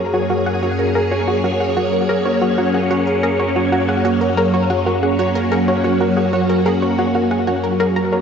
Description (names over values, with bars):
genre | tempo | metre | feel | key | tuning
ambient, sequencer-driven space music | 92 BPM | 4/4 | straight | unclear | A4 = 440 Hz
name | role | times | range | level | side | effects
phased string machine | sustained chords | 0.0-8.2 s | Gb3 to Db5 | -17 LUFS | right 1 dB | ensemble chorus, phaser, shimmer reverb
wide unison pluck | arpeggios | 0.0-8.2 s | Gb4 to Db5 | -25 LUFS | right 1 dB | auto-pan, ping-pong delay, shimmer reverb
analog pluck | riff | 0.0-8.2 s | Gb4 to Bb5 | -21 LUFS | left 1 dB | chorus, ping-pong delay, shimmer reverb
analog drone | bass | 0.0-8.2 s | Gb2 | -24 LUFS | equal | chorus
room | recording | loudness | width
wet plate reverb, RT60 3.4 s | worn, warbling old tape, cassette tape, warbly pitch drift, nothing above 7.8 kHz | -15 LUFS | side -7 dB against mid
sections
0.0-8.2 A section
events
none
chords
0.0 Gbadd9